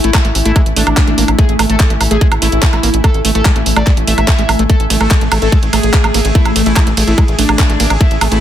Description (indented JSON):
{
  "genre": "psychedelic trance",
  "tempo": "145 BPM",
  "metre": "4/4",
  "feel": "straight",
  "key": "unclear",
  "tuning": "A4 = 440 Hz",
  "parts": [
    { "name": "overdriven synth lead", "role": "melody", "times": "0.0-8.4 s", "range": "D4 to E5", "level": "-20 LUFS", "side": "equal", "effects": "distortion, phaser, sidechain pumping, ping-pong delay" },
    { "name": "evolving wavetable pad", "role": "sustained chords", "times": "0.0-8.4 s", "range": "A3 to G#4", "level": "-20 LUFS", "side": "left 2 dB", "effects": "chorus, built-in reverb, sidechain pumping" },
    { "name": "overdriven acid bass", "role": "riff", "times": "0.0-8.4 s", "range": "G#3 to Bb3", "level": "-20 LUFS", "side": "moving between left 2 dB and right 4 dB", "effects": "distortion, auto-pan, vintage 12-bit sampler grit, sidechain pumping, ping-pong delay" },
    { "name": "tight sequencer bass", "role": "bass", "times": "0.0-8.4 s", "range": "A1", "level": "-15 LUFS", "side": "equal", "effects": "tube saturation" },
    { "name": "garage drum kit", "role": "drums", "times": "0.0-8.4 s", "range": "handclaps, hi-hat, ride cymbal, woodblock", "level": "-16 LUFS", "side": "right 2 dB", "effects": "overdrive" },
    { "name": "warbly tape-like pad", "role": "texture", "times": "0.0-8.4 s", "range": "A3 to G#5", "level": "-25 LUFS", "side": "right 1 dB", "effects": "chorus, built-in reverb, sidechain pumping" },
    { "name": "metallic wobble bass", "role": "second line", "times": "0.1-0.7, 5.1-6.7 s", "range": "E3 to A3", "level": "-34 LUFS", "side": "left 5 dB", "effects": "none" },
    { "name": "electronic kick drum", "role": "drums", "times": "0.1-8.1 s", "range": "none", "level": "-10 LUFS", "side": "equal", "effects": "overdrive" }
  ],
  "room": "digital ambience",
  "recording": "dense, heavily limited modern master",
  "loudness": "-9 LUFS",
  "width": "side -11 dB against mid",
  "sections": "0.0-8.4 A section",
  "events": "none",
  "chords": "0.0 A5"
}